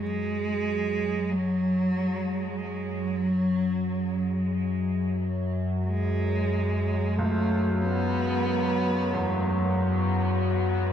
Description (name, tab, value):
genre	dark ambient drone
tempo	46 BPM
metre	4/4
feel	straight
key	F# minor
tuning	A4 = 439 Hz
part	dark cello	melody	0.0-9.8 s	F#3 to B3	-29 LUFS	right 1 dB	dub echo
part	analog drone	drone	0.0-10.9 s	F#2 to F#3	-26 LUFS	equal	chorus
part	clear grand piano	arpeggios	7.2-10.9 s	C#2 to E2	-34 LUFS	right 1 dB	dub echo
room	moderate spring reverb, RT60 2.4 s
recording	echo-heavy mix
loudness	-24 LUFS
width	side -9 dB against mid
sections	0.0-10.9 A section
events	none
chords	0.0 F#5